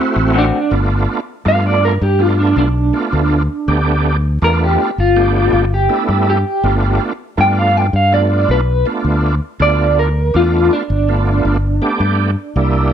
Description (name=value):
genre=blues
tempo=81 BPM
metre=4/4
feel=straight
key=G mixolydian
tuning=A4 = 440 Hz
part: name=electric guitar through a small old amp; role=melody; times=0.0-12.9 s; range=C4 to G5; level=-16 LUFS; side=equal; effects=tremolo
part: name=overdriven tonewheel organ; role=accompaniment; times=0.0-12.9 s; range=G3 to G4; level=-19 LUFS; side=right 3 dB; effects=slow rotary speaker, chorus vibrato, plate reverb
part: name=fingered electric bass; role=bass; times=0.2-12.9 s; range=G1 to G2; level=-15 LUFS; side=left 1 dB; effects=none
part: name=electric guitar through a small old amp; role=stabs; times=0.3-0.6 s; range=D3 to F#4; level=-20 LUFS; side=left 7 dB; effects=slapback echo, plate reverb
room=light reverb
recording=none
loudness=-12 LUFS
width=side -9 dB against mid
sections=0.7-12.9 A section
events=none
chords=0.0 D7; 0.7 G7